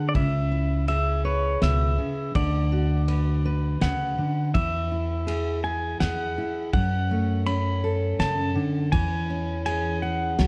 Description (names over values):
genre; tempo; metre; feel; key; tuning
acoustic folk duo or small band; 82 BPM; 3/4; straight; unclear; A4 = 444 Hz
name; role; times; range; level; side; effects
pedal steel guitar; second line; 0.0-10.5 s; C#5 to B5; -32 LUFS; equal; none
fingerpicked steel-string acoustic guitar; accompaniment; 0.0-10.5 s; F#2 to B4; -29 LUFS; equal; none
upright bass; bass; 0.1-10.5 s; C#2 to F#2; -29 LUFS; equal; none
cloth-damped thuddy drum kit; drums; 0.1-10.5 s; kick drum, ride cymbal, snare drum; -34 LUFS; equal; none
room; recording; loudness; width
moderate large studio reverb, RT60 0.9 s; dark, warm production; -25 LUFS; mono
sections
0.0-10.5 A section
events
pedal steel guitar solo 0.0-10.5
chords
0.2 C#m7; 2.3 Bm/D; 4.5 E; 6.7 F#m; 8.9 E6